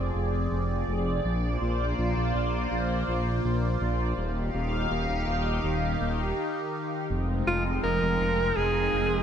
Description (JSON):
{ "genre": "synthwave", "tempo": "82 BPM", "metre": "4/4", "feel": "straight", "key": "F dorian", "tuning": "A4 = 440 Hz", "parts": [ { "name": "phased analog pad", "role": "sustained chords", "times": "0.0-9.2 s", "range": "Eb3 to F5", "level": "-29 LUFS", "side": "equal", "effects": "phaser, chorus, shimmer reverb" }, { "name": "dark detuned saw bass", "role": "bass", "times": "0.0-9.2 s", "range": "Eb1 to Bb1", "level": "-28 LUFS", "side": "equal", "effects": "none" }, { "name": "warm alto saxophone", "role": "melody", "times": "7.5-9.2 s", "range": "F4 to Bb4", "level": "-25 LUFS", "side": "right 1 dB", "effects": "shimmer reverb" } ], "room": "moderate lush hall reverb, RT60 2.8 s", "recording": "bright 1980s-style digital production", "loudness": "-25 LUFS", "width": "side -8 dB against mid", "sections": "0.0-7.1 A section; 7.1-9.2 B section", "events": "break 6.4-7.1", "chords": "0.0 Fm; 1.3 Bbadd9; 4.2 Ebadd9; 7.1 Fm7", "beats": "0.52 | 1.25 1.98 2.71 3.45 | 4.18 4.91 5.64 6.37 | 7.11 7.84 8.57" }